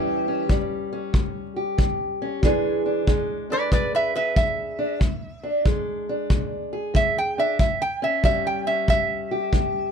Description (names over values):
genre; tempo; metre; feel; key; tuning
acoustic country blues, solo or duo; 93 BPM; 4/4; swing 66% on 8ths; E mixolydian; A4 = 439 Hz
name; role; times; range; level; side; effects
lap resonator guitar; melody; 0.0-9.9 s; B4 to G5; -23 LUFS; right 2 dB; none
fingerpicked steel-string acoustic guitar; accompaniment; 0.0-9.9 s; E2 to G#4; -25 LUFS; equal; none
kick drum; drums; 0.5-9.7 s; none; -22 LUFS; equal; none
room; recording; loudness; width
light reverb; dark, warm production; -21 LUFS; side -7 dB against mid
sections
0.0-9.9 A section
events
resonator guitar played with a steel bar solo 0.0-9.9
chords
0.0 A7; 2.4 E7; 7.6 A7